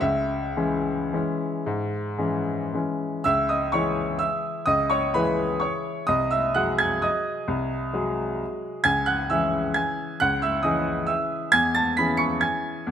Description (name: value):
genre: classical, piano waltz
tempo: 105-140 BPM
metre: 3/4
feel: rubato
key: C# minor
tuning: A4 = 441 Hz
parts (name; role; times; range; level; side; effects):
- bright upright piano; solo; 0.0-12.9 s; B#1 to C#7; -22 LUFS; equal; none
room: moderate concert hall reverb, RT60 1.9 s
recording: close, detailed microphones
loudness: -22 LUFS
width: side -8 dB against mid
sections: 0.0-3.3 A section; 3.3-12.9 B section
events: none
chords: 0.0 C#m; 6.1 G#7/B#; 8.9 C#m; 11.5 C#m/E